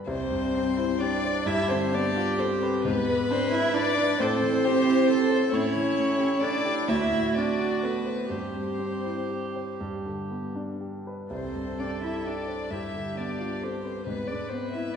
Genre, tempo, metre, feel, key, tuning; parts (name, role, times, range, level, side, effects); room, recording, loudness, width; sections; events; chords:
classical, slow romantic movement for piano quintet; 39-46 BPM (dotted quarters); 6/8; rubato; C major; A4 = 440 Hz
warm grand piano; accompaniment; 0.0-15.0 s; C2 to D5; -30 LUFS; equal
warm violin; melody; 0.1-15.0 s; B4 to E5; -31 LUFS; left 5 dB
dark cello; second line; 0.1-15.0 s; B3 to E4; -29 LUFS; right 3 dB
dark violin; second line; 0.1-15.0 s; B4 to E5; -34 LUFS; left 5 dB
rich viola; accompaniment; 1.5-15.0 s; E4 to B4; -32 LUFS; right 2 dB
wet scoring stage reverb, RT60 1.4 s; heard from further back in the room, nothing above 11.0 kHz; -24 LUFS; side -7 dB against mid
0.1-15.0 A section
0.1 C; 1.5 G9; 2.9 E7/G#; 4.2 Am; 5.5 A7; 6.9 D7; 8.3 C/G; 9.8 G; 11.3 C; 12.7 G9; 14.1 E/G#